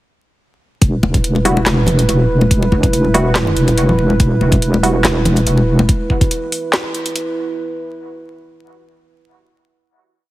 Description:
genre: deep dubstep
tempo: 142 BPM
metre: 4/4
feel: swing 53% on 16ths, half-time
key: E minor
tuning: A4 = 440 Hz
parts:
  - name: dark analog pad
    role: sustained chords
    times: 0.8-7.6 s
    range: E4 to B4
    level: -20 LUFS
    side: right 2 dB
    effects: chorus
  - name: deep soft wobble bass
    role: bass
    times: 0.8-5.9 s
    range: E1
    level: -15 LUFS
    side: equal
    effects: chorus
  - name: electronic kick drum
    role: drums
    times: 0.8-6.3 s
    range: none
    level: -15 LUFS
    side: equal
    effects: none
  - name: garage drum kit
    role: drums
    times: 0.8-7.2 s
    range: handclaps, hi-hat, snare drum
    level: -19 LUFS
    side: equal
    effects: none
  - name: congas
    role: percussion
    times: 0.8-5.9 s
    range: none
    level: -19 LUFS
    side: left 2 dB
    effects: none
  - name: filtered dub chord stab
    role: stabs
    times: 1.4-5.0 s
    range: G3 to F#4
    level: -21 LUFS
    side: right 1 dB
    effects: chorus, cassette tape, dub echo
room: light reverb, digital ambience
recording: heavily compressed radio sound, multiband compression, vinyl crackle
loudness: -12 LUFS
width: side -16 dB against mid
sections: 0.8-7.6 drop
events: drop 0.8-7.6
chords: 0.8 Emadd9

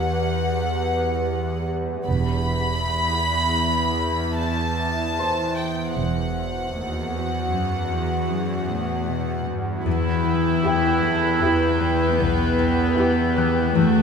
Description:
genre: cinematic, suspense film score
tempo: 77 BPM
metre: 5/4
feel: straight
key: E minor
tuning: A4 = 440 Hz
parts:
  - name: warm symphonic violin section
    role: melody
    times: 0.0-13.6 s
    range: E5 to B5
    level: -27 LUFS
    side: left 1 dB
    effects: none
  - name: warbly tape-like pad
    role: sustained chords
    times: 0.0-14.0 s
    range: E4 to G5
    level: -29 LUFS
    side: right 1 dB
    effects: chorus, built-in reverb
  - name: warm symphonic cello section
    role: bass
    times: 0.0-14.0 s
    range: D#2 to E4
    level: -25 LUFS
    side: right 2 dB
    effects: none
  - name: bowed-like drone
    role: drone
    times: 0.0-14.0 s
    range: E2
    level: -28 LUFS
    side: left 2 dB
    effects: built-in reverb
  - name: clear concert grand piano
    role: texture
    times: 0.0-14.0 s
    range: C5 to F#6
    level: -33 LUFS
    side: left 2 dB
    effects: none
  - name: warm studio double bass section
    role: bass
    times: 2.1-14.0 s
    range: E1 to E2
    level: -26 LUFS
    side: right 3 dB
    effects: none
  - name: warm symphonic violin section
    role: second line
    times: 9.9-14.0 s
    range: F#4 to B4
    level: -29 LUFS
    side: right 2 dB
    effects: none
  - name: concert harp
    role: riff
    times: 9.9-14.0 s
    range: E2 to E3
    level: -24 LUFS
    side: left 8 dB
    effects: none
  - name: warm symphonic violin section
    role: texture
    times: 9.9-14.0 s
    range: E6 to G6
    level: -32 LUFS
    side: left 4 dB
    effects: none
  - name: rich studio viola section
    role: accompaniment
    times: 10.6-13.6 s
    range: E4 to G4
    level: -30 LUFS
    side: right 2 dB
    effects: none
room: wet scoring stage reverb, RT60 1.7 s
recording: none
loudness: -20 LUFS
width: side -6 dB against mid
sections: 0.0-9.9 A section; 9.9-14.0 B section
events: none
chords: 0.0 Emadd9; 2.1 Bsus4/E; 9.9 Em

